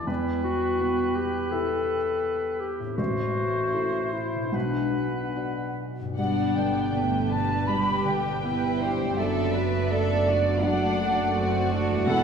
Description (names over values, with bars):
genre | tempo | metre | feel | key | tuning
cinematic, emotional film score for orchestra | 81 BPM | 4/4 | rubato | unclear | A4 = 442 Hz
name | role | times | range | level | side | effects
clear oboe | second line | 0.0-5.8 s | B4 to C5 | -34 LUFS | equal | none
mellow hollow concert flute | second line | 0.0-12.2 s | D5 to B5 | -31 LUFS | equal | none
felt-muted upright piano | accompaniment | 0.0-12.2 s | A1 to A4 | -30 LUFS | right 1 dB | none
concert harp | arpeggios | 0.0-12.2 s | E2 to B4 | -33 LUFS | left 6 dB | none
warm clarinet | second line | 0.1-5.4 s | D4 to A4 | -28 LUFS | left 2 dB | none
dark studio violin section | melody | 6.2-12.2 s | B4 to E5 | -36 LUFS | left 4 dB | none
warm studio violin section | second line | 6.2-12.2 s | D5 to B5 | -33 LUFS | equal | none
rich symphonic viola section | accompaniment | 6.2-12.2 s | G3 to E4 | -32 LUFS | right 3 dB | none
rich studio double bass section | bass | 6.2-12.2 s | E1 to G1 | -29 LUFS | right 4 dB | none
warm studio cello section | bass | 7.7-12.2 s | D4 to B4 | -30 LUFS | right 2 dB | none
room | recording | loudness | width
wet scoring stage reverb, RT60 1.6 s | heard from further back in the room | -23 LUFS | side -6 dB against mid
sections
0.0-6.2 A section; 6.2-12.2 A section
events
none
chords
0.1 Em; 3.0 Am; 4.5 Bm; 6.2 G; 9.2 D/F#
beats
| 0.09 0.81 1.53 2.25 | 2.99 3.74 4.54 5.37 | 6.18 6.95 7.69 8.44 | 9.18 9.91 10.64 11.36 | 12.08